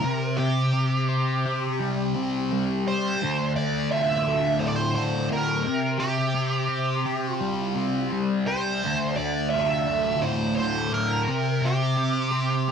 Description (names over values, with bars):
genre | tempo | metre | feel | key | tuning
rock | 85 BPM | 4/4 | straight | unclear | A4 = 440 Hz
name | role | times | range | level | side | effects
dark smooth lead guitar | melody | 0.0-12.7 s | G4 to E5 | -27 LUFS | right 3 dB | wah, overdrive, slapback echo
thick fuzz guitar | riff | 0.0-12.7 s | D2 to C5 | -24 LUFS | left 1 dB | distortion, phaser
room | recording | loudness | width
light reverb | dry, close 1970s-style studio recording | -22 LUFS | side -7 dB against mid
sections
0.0-12.7 A section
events
none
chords
0.0 C5; 3.2 Dm; 5.7 C5; 8.8 Dm; 11.3 C5